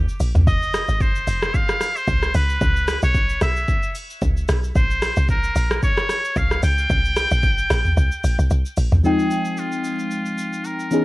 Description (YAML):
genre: amapiano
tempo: 112 BPM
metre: 4/4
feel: swing 55% on 16ths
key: F minor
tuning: A4 = 440 Hz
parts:
  - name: tight log drum bass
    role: bass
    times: 0.0-9.0 s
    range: F1 to Db2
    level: -20 LUFS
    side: equal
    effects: none
  - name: deep house drum kit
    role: drums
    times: 0.1-11.0 s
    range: hi-hat, kick drum, rim click, shaker, toms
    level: -22 LUFS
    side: equal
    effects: cassette tape
  - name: trumpet with straight mute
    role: melody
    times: 0.5-11.0 s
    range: F4 to G5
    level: -23 LUFS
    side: equal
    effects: cassette tape, tape echo
  - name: mellow FM electric piano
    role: accompaniment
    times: 9.0-11.0 s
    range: Fb3 to G5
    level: -20 LUFS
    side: left 2 dB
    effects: chorus, phaser
room: digital ambience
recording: home recording on cassette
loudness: -17 LUFS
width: side -19 dB against mid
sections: 0.0-9.0 A section; 9.0-11.0 B section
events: drop 0.0-9.0; kick muted 8.0-9.0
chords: 0.5 Fm7; 2.3 Dbm7; 4.8 Bbm; 6.9 C5; 9.0 Fm7